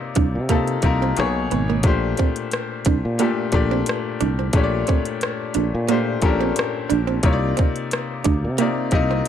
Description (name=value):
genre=R&B, neo-soul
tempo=89 BPM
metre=4/4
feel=straight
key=Bb major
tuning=A4 = 440 Hz
part: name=bright concert grand piano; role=accompaniment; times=0.0-9.3 s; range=Bb2 to Eb5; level=-23 LUFS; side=left 5 dB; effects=none
part: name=archtop guitar, miked and amplified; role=second line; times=0.2-9.2 s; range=Bb3 to D4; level=-24 LUFS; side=right 14 dB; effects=none
part: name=sustaining fretless electric bass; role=bass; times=0.2-9.2 s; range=G#1 to C3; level=-23 LUFS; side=equal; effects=none
part: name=garage drum kit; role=drums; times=0.2-9.3 s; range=hi-hat, kick drum, rim click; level=-21 LUFS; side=equal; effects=none
room=little or no reverb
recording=dark, warm production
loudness=-18 LUFS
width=side -9 dB against mid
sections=0.0-9.3 A section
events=none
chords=0.0 Cm11; 1.2 Bmaj13; 1.8 Bbmaj13; 7.2 Cm11